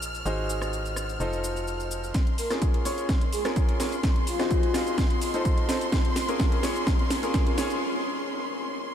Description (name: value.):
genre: piano house.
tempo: 127 BPM.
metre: 4/4.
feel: straight.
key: Bb minor.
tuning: A4 = 440 Hz.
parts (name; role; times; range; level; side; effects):
clear studio violin section; sustained chords; 0.0-8.9 s; C6 to F6; -35 LUFS; equal; sidechain pumping.
clear concert grand piano; riff; 0.0-7.8 s; Db4 to F5; -31 LUFS; equal; sidechain pumping, low-pass filter, ping-pong delay.
organ-like FM bass; bass; 0.0-2.1 s; F1 to Bb1; -33 LUFS; equal; sidechain pumping.
house drum kit; drums; 0.0-7.8 s; hi-hat, rim click, shaker, snare drum; -31 LUFS; right 1 dB; overdrive.
electronic kick drum; drums; 2.1-7.4 s; none; -25 LUFS; equal; none.
breathy flute-like synth lead; melody; 2.4-4.7 s; F4 to Bb4; -36 LUFS; left 4 dB; none.
room: moderate huge ambient reverb, RT60 9.0 s.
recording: dreamy mix soaked in reverb.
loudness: -24 LUFS.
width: side -9 dB against mid.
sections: 0.0-2.1 A section; 2.1-8.9 B section.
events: build-up 2.1-8.9; drum fill 2.1-7.8; filter sweep on grand piano 2.1-8.9; break 7.8-8.9.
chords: 0.3 Ab7; 1.2 F7; 2.1 Bbm7; 4.0 Ab7; 5.0 F7; 5.9 Bbm7; 7.8 N.C..